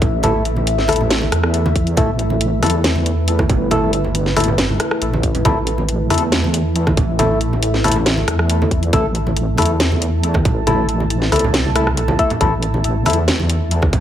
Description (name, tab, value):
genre	deep dubstep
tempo	138 BPM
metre	4/4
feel	half-time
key	unclear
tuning	A4 = 440 Hz
part	deep dark ambient pad	sustained chords	0.0-14.0 s	A3 to A5	-23 LUFS	equal	chorus, built-in reverb
part	deep soft wobble bass	bass	0.0-14.0 s	G1 to E2	-18 LUFS	equal	chorus
part	electronic kick drum	drums	0.0-14.0 s	none	-18 LUFS	equal	none
part	garage drum kit	drums	0.0-14.0 s	hi-hat, rim click, snare drum	-21 LUFS	equal	none
part	congas	percussion	0.0-14.0 s	none	-24 LUFS	right 3 dB	dub echo
part	percussive organ stab	stabs	0.2-13.2 s	A3 to A4	-22 LUFS	left 3 dB	chorus, dub echo
room	light reverb, digital ambience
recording	none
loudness	-14 LUFS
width	side -10 dB against mid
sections	0.0-14.0 A section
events	none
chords	0.0 A5